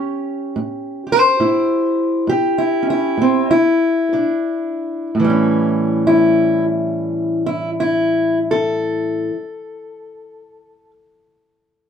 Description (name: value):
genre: acoustic country blues, solo or duo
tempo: 57-74 BPM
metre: 4/4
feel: swing 61% on 8ths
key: A mixolydian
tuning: A4 = 441 Hz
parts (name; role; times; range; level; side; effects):
- fingerpicked steel-string acoustic guitar; solo; 0.0-10.9 s; A2 to C5; -15 LUFS; equal; none
room: moderate studio reverb, RT60 0.6 s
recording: band playing live in one room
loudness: -15 LUFS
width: side -7 dB against mid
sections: 0.0-5.2 A section; 5.2-9.3 B section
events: slowing down 0.0-5.2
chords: 0.0 A7; 4.1 Bb; 5.2 A7